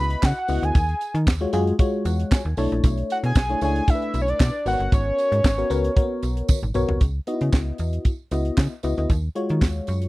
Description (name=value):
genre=early-eighties boogie funk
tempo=115 BPM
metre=4/4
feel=straight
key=C# dorian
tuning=A4 = 441 Hz
part: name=fat analog lead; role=melody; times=0.0-6.5 s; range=C#5 to B5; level=-24 LUFS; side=equal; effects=chorus, slapback echo
part: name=FM electric piano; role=accompaniment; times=0.0-10.1 s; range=G#3 to C#6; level=-26 LUFS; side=left 2 dB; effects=chorus
part: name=slap-like FM bass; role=bass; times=0.0-10.1 s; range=G1 to D#3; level=-24 LUFS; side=equal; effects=none
part: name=tight funk drum kit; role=drums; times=0.1-10.1 s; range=handclaps, hi-hat, kick drum, snare drum, toms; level=-19 LUFS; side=equal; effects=none
part: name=tambourine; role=percussion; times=0.2-10.0 s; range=none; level=-42 LUFS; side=right 16 dB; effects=none
room=little or no reverb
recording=dry, close 1970s-style studio recording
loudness=-20 LUFS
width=side -19 dB against mid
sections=0.0-7.0 A section; 7.0-10.1 B section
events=FM electric piano fill 1.8-2.8, 9.6-10.1; drum fill 6.5-7.0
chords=0.0 C#m11; 0.7 D#m11; 2.6 Bm11; 4.7 G#m11; 7.0 C#m11; 9.1 D#m11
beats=0.23 | 0.75 1.27 1.79 2.31 | 2.84 3.36 3.88 4.40 | 4.92 5.44 5.97 6.49 | 7.01 7.53 8.05 8.57 | 9.10 9.62